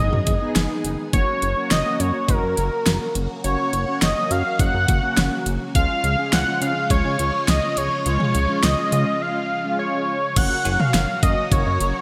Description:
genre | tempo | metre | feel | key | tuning
synth-pop | 104 BPM | 4/4 | straight | F# major | A4 = 439 Hz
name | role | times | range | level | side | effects
octave-doubled lead | melody | 0.0-12.0 s | A#4 to F#5 | -25 LUFS | equal | chorus, digital delay
mellow synth brass | accompaniment | 0.0-12.0 s | G#3 to G#4 | -31 LUFS | equal | chorus, phaser
phased string machine | sustained chords | 0.0-12.0 s | C#3 to G#4 | -34 LUFS | equal | ensemble chorus, phaser
chorused synth bass | bass | 0.0-11.9 s | F#1 to C#3 | -26 LUFS | equal | none
pop drum kit | drums | 0.1-11.9 s | cowbell, crash cymbal, hi-hat, kick drum, snare drum, toms | -24 LUFS | equal | overdrive, gated reverb
room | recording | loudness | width
moderate lush hall reverb, RT60 2.4 s | bright 1980s-style digital production | -21 LUFS | mono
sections
0.0-10.4 A section; 10.4-12.0 B section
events
break 9.2-10.4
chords
0.0 G#m/F#; 1.1 F#; 5.8 C#; 10.4 F#

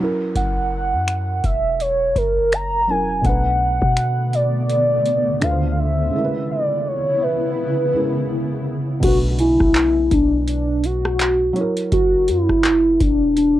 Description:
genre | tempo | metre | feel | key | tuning
contemporary R&B | 83 BPM | 4/4 | swing 58% on 16ths | B dorian | A4 = 440 Hz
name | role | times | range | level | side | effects
felt-muted upright piano | accompaniment | 0.0-13.6 s | B2 to C#5 | -26 LUFS | right 2 dB | cassette tape
downlifter | sound effects | 0.0-3.2 s | none | -46 LUFS | left 1 dB | none
warm velvety synth lead | melody | 0.4-13.6 s | D4 to A#5 | -18 LUFS | equal | chorus, tape echo
warm 808-style bass | bass | 0.4-13.6 s | E1 to B2 | -23 LUFS | equal | none
booming analog drum machine | drums | 0.4-13.6 s | crash cymbal, finger snaps, handclaps, hi-hat, kick drum, rim click | -21 LUFS | equal | cassette tape
granular cloud pad | sustained chords | 4.3-9.0 s | C#3 to E4 | -25 LUFS | left 1 dB | built-in reverb, sidechain pumping, cassette tape
celesta | texture | 3.2-11.9 s | E5 to G#5 | -36 LUFS | left 1 dB | cassette tape, tape echo
room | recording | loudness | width
light reverb | home recording on cassette | -16 LUFS | side -13 dB against mid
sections
0.0-9.0 A section; 9.0-13.6 B section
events
break 6.1-9.0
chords
0.0 F#7; 3.2 Bm7; 5.4 Dm7; 6.1 C#m7; 9.0 Bm7; 11.6 F#7

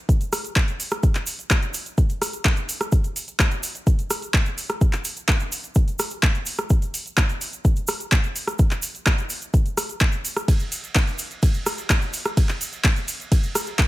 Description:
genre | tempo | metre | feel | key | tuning
house | 127 BPM | 4/4 | straight | none | none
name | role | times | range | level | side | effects
deep house drum kit | drums | 0.1-13.9 s | handclaps, hi-hat, ride cymbal, rim click | -24 LUFS | equal | sidechain pumping on hats, studio reverb, sidechain pumping on cymbals
electronic kick drum | drums | 0.1-13.9 s | none | -19 LUFS | equal | studio reverb
egg shaker | percussion | 0.1-13.9 s | none | -32 LUFS | right 3 dB | none
room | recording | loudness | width
little or no reverb | none | -20 LUFS | side -17 dB against mid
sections
0.0-13.9 A section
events
none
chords
none

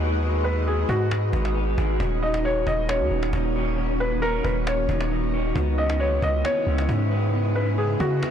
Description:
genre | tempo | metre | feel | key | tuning
hip hop, atmospheric cloud-rap | 135 BPM | 4/4 | half-time | unclear | A4 = 441 Hz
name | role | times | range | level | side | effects
shimmering ambient pad | sustained chords | 0.0-8.3 s | C#3 to B4 | -28 LUFS | equal | chorus, built-in reverb
electric guitar at the edge of break-up | arpeggios | 0.0-8.3 s | G#3 to C#5 | -31 LUFS | equal | lush chorus, low-pass filter, tape echo
long sustained 808-style bass | bass | 0.0-8.2 s | D#1 to C#3 | -24 LUFS | equal | tube saturation
cajon | drums | 0.0-8.3 s | none | -33 LUFS | equal | none
felt-muted upright piano | melody | 0.4-8.2 s | F#4 to D#5 | -27 LUFS | left 1 dB | low-pass filter, tape echo
room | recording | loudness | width
little or no reverb | blown-out, overdriven recording, overdrive | -21 LUFS | side -8 dB against mid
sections
0.0-8.3 A section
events
none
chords
0.0 G#m7; 2.0 D#m7; 5.6 C#m7

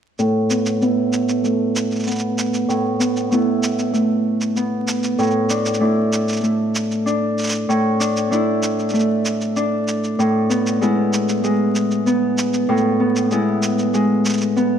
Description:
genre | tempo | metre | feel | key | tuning
folktronica | 96 BPM | 4/4 | straight | unclear | A4 = 441 Hz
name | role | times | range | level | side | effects
Celtic harp | arpeggios | 0.2-14.8 s | A2 to E4 | -17 LUFS | equal | low-pass filter, ping-pong delay
shaker | drums | 0.2-14.7 s | none | -27 LUFS | right 2 dB | none
room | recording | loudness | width
moderate echo chamber reverb, RT60 2.4 s | vinyl crackle | -16 LUFS | side -8 dB against mid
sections
0.2-14.8 A section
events
filter sweep on harp 0.2-14.8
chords
0.2 Asus2; 5.2 Dsus2/A; 10.2 E/A

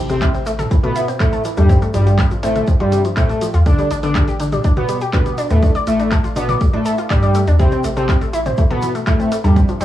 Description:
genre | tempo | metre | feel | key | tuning
melodic techno | 122 BPM | 4/4 | straight | A minor | A4 = 440 Hz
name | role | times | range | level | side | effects
analog pluck | arpeggios | 0.0-9.8 s | C3 to D5 | -23 LUFS | equal | chorus, sidechain pumping, cassette tape, analog delay
round analog bass | bass | 0.0-9.8 s | A1 to A2 | -19 LUFS | equal | sidechain pumping
impact | sound effects | 0.0-1.7 s | none | barely audible | none | none
analog synth brass | melody | 0.1-9.8 s | G3 to D4 | -20 LUFS | equal | chorus, tape echo
glassy wavetable pluck | second line | 0.1-9.8 s | G2 to D3 | -21 LUFS | left 1 dB | chorus, cassette tape, sidechain pumping, analog delay
techno drum kit | drums | 0.1-9.8 s | handclaps, hi-hat, toms | -27 LUFS | equal | sidechain pumping on hats, sidechain pumping on toms, sidechain pumping on cymbals
tube shaker | percussion | 0.1-9.8 s | none | -39 LUFS | left 1 dB | none
electronic kick drum | drums | 0.2-9.7 s | none | -15 LUFS | equal | none
room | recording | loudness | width
light reverb, digital ambience | home recording on cassette, small room ambience | -14 LUFS | side -13 dB against mid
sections
0.0-9.8 A section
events
impact 0.0-1.7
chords
0.0 Am; 1.7 F/A; 3.7 G/A; 5.6 Dm/A; 7.6 Am

